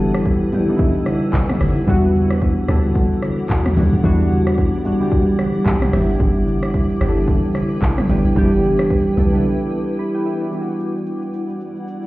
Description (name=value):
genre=amapiano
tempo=111 BPM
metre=4/4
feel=swing 58% on 16ths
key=E minor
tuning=A4 = 440 Hz
part: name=warm analog keys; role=accompaniment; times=0.0-12.1 s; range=E3 to B5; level=-19 LUFS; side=equal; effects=chorus
part: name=granular cloud pad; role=sustained chords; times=0.0-12.1 s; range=G3 to E6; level=-26 LUFS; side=left 1 dB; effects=built-in reverb
part: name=deep log drum bass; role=bass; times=0.0-9.4 s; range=G1 to E2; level=-20 LUFS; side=equal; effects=none
part: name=deep house drum kit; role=drums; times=0.1-12.1 s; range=handclaps, hi-hat, kick drum, rim click, shaker, toms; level=-20 LUFS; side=equal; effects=none
part: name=congas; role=percussion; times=0.5-9.4 s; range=none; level=-28 LUFS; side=left 1 dB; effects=none
room=light reverb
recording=heard muffled through a wall, stone room reverb, EQ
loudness=-15 LUFS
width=side -18 dB against mid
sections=0.0-10.5 A section; 10.5-12.1 B section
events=drop 0.0-10.5; synth keys fill 5.4-6.2, 9.7-10.5; break 9.4-10.5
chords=0.0 G6; 1.9 Em9; 5.9 G6; 10.5 Em9